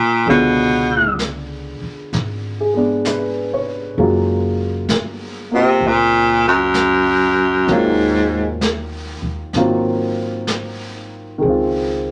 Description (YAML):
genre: jazz ballad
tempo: 65 BPM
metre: 4/4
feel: swing 66% on 8ths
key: unclear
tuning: A4 = 440 Hz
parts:
  - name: warm baritone saxophone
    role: melody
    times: 0.0-8.6 s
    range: Gb2 to C3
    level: -16 LUFS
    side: equal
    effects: none
  - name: dark upright piano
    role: accompaniment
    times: 0.0-12.1 s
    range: D3 to Db5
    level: -22 LUFS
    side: equal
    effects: none
  - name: upright bass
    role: bass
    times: 0.3-12.1 s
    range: Gb1 to Eb2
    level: -29 LUFS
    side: equal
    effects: none
  - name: vintage brush drum kit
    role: drums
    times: 0.3-12.1 s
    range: brushed snare drum, hi-hat, snare drum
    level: -28 LUFS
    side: equal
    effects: none
room: wet studio reverb, RT60 0.6 s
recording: none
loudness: -17 LUFS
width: mono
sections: 0.0-12.1 A section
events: none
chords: 0.3 Db7b9; 4.0 Gbmaj7; 7.7 Ebm7; 9.5 Ab13; 11.4 Dbmaj9